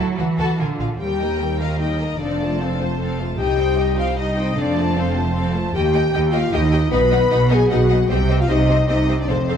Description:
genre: cinematic, heroic adventure film score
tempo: 152 BPM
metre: 3/4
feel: straight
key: Eb lydian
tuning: A4 = 439 Hz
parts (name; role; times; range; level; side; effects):
- rich studio violin section; melody; 0.0-9.6 s; C5 to B5; -28 LUFS; left 4 dB; none
- rich studio violin section; second line; 0.0-9.6 s; F4 to Bb5; -28 LUFS; left 2 dB; none
- rich symphonic viola section; accompaniment; 0.0-9.6 s; G3 to Bb4; -28 LUFS; equal; none
- rich symphonic cello section; bass; 0.0-9.6 s; C2 to F#3; -23 LUFS; right 2 dB; none
- warm studio double bass section; bass; 0.0-9.6 s; F1 to Eb2; -22 LUFS; right 2 dB; none
- dark French horn section; sustained chords; 1.0-9.6 s; C4 to B4; -21 LUFS; left 3 dB; none
room: wet scoring stage reverb, RT60 2.0 s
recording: none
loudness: -16 LUFS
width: side -8 dB against mid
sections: 0.0-1.0 A section; 1.0-9.6 B section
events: none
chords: 0.0 D; 0.6 Bb; 1.0 Eb; 2.2 F; 3.4 Cm; 4.6 F; 5.7 Eb; 6.9 B; 8.1 Cm

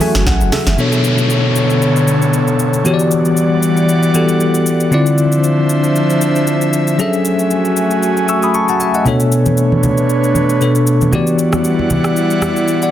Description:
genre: amapiano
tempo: 116 BPM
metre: 4/4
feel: swing 55% on 16ths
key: B minor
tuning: A4 = 440 Hz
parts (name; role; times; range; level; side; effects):
- bell-like tine electric piano; accompaniment; 0.0-12.9 s; B2 to E6; -14 LUFS; left 2 dB; fast stereo tremolo
- airy breathy pad; sustained chords; 0.0-12.9 s; D3 to G#5; -17 LUFS; right 1 dB; chorus
- deep mellow chord stab; stabs; 0.0-0.8 s; G#4 to E5; -25 LUFS; right 2 dB; chorus, tape echo
- afro-pop drum kit; drums; 0.0-12.9 s; hi-hat, kick drum, rim click, shaker, snare drum; -22 LUFS; left 1 dB; none
- congas; percussion; 0.0-0.8, 9.1-12.6 s; none; -20 LUFS; right 2 dB; none
- deep log drum bass; bass; 0.1-0.8 s; F#1 to A1; -16 LUFS; equal; none
- downlifter; sound effects; 0.8-4.9 s; none; -23 LUFS; equal; none
room: light reverb, digital ambience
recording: dense, heavily limited modern master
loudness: -11 LUFS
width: side -11 dB against mid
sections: 0.8-12.9 A section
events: drum fill 0.0-0.8; tine electric piano fill 0.0-0.8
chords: 0.0 F#m9; 0.8 Bm9; 2.9 Em9; 4.9 Dm9; 7.0 F#m9; 9.1 Bm9; 11.1 Em9

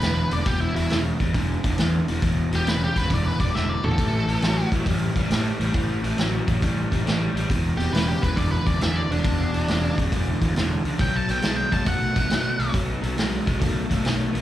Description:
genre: blues rock power trio and southern rock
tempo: 137 BPM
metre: 4/4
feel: swing 68% on 8ths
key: unclear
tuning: A4 = 441 Hz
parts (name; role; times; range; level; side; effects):
- octave-fuzz lead guitar; melody; 0.0-4.7, 7.8-12.7 s; D4 to A5; -28 LUFS; equal; distortion
- crunchy overdriven guitar; riff; 0.0-14.4 s; E2 to A3; -26 LUFS; equal; slapback echo
- fuzz picked electric bass; bass; 0.0-14.4 s; E1 to B2; -25 LUFS; equal; overdrive
- vintage drum kit; drums; 0.0-14.4 s; hi-hat, kick drum, snare drum, toms; -26 LUFS; equal; none
- overdriven tonewheel organ; sustained chords; 4.0-14.4 s; C#4 to B4; -39 LUFS; right 2 dB; none
room: studio ambience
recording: live gig heard through the venue's PA, club reverb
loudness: -20 LUFS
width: side -13 dB against mid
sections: 0.0-14.4 A section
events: drum fill 3.5-4.0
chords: 0.0 E5; 4.0 A7; 7.5 E7; 11.0 B7

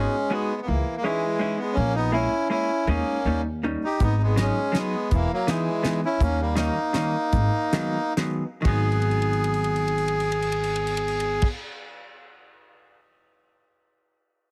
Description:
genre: musette waltz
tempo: 122-167 BPM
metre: 3/4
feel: swing 54% on 8ths, rubato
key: G# minor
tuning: A4 = 442 Hz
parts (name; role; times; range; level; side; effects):
- accordion; melody; 0.0-11.5 s; E3 to G#4; -28 LUFS; equal; none
- vintage hollow-body jazz guitar; accompaniment; 0.0-11.5 s; D#3 to F#4; -30 LUFS; equal; none
- upright bass; bass; 0.0-11.5 s; E1 to D#2; -28 LUFS; equal; none
- damped 70s drum kit; drums; 4.0-13.0 s; crash cymbal, hi-hat, kick drum, ride cymbal, snare drum; -30 LUFS; equal; none
room: little or no reverb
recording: heavily compressed radio sound, multiband compression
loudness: -24 LUFS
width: mono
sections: 0.0-8.7 A section; 8.7-11.5 B section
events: slowing down 6.2-8.7; drum fill 8.9-11.4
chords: 0.0 G#m7; 0.7 C#madd9; 1.8 A#m7b5; 2.9 D#7sus4; 3.2 D#7; 4.0 G#m7; 5.1 Emaj7; 6.2 D#7; 7.3 G#m7

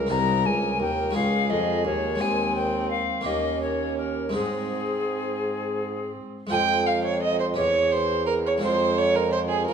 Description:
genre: classical, baroque-style sonata movement with continuo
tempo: 57 BPM (dotted quarters)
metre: 6/8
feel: straight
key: Ab major, F minor from 6.5 s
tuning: A4 = 440 Hz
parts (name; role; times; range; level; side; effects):
- bright alto recorder; melody; 0.0-9.7 s; Ab4 to Bb5; -28 LUFS; left 6 dB; none
- warm violin; second line; 0.0-9.7 s; C4 to G5; -26 LUFS; right 5 dB; none
- harpsichord; accompaniment; 0.0-9.7 s; C2 to Ab4; -30 LUFS; left 2 dB; none
- warm bassoon; bass; 0.0-9.7 s; C2 to F3; -28 LUFS; right 2 dB; none
room: wet recital hall reverb, RT60 1.6 s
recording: dark, warm production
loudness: -22 LUFS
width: side -7 dB against mid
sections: 0.0-6.5 A section; 6.5-9.7 A section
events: none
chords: 0.1 Ab/C; 1.2 Db; 2.2 Ab/Eb; 3.3 Eb7; 4.3 Ab; 6.5 Fm; 7.6 C/E; 8.6 Fm

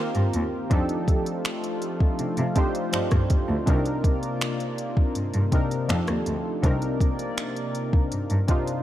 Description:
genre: contemporary R&B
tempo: 81 BPM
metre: 4/4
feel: straight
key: C dorian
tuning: A4 = 438 Hz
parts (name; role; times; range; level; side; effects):
- warm analog keys; accompaniment; 0.0-8.8 s; C3 to C5; -27 LUFS; equal; chorus
- chorused pulse-width pad; sustained chords; 0.0-8.8 s; C3 to D5; -32 LUFS; left 2 dB; none
- smooth R&B drum kit; drums; 0.1-8.8 s; finger snaps, hi-hat, kick drum, rim click; -24 LUFS; equal; none
- dark cello; bass; 0.2-8.4 s; C2 to C3; -27 LUFS; equal; none
room: light reverb, digital ambience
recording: dark, warm production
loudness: -22 LUFS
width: side -13 dB against mid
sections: 0.0-8.8 A section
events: none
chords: 0.0 Eb69; 0.7 F13; 3.7 Cm9; 5.9 F13; 6.6 Cm9

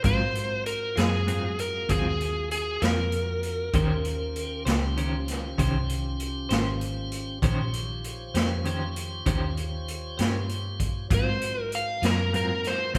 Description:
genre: slow blues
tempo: 65 BPM (dotted quarters)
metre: 12/8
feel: straight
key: Eb mixolydian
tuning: A4 = 439 Hz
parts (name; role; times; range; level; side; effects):
- overdriven slide guitar; melody; 0.0-4.6, 11.1-13.0 s; Ab4 to F5; -31 LUFS; equal; none
- clean electric guitar; accompaniment; 0.0-13.0 s; Ab2 to C5; -35 LUFS; equal; tremolo
- tonewheel organ; sustained chords; 0.0-13.0 s; C4 to Db5; -40 LUFS; equal; slow rotary speaker
- vintage muted fingered electric bass; bass; 0.0-13.0 s; Ab1 to Bb2; -32 LUFS; equal; none
- raw garage drum kit; drums; 0.0-13.0 s; hi-hat, kick drum, snare drum; -32 LUFS; equal; none
room: moderate recital hall reverb, RT60 1.7 s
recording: recorded in a church or concert hall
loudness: -27 LUFS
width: mono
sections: 0.0-13.0 A section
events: none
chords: 0.1 Ab13; 3.7 Eb13; 11.1 Ab13

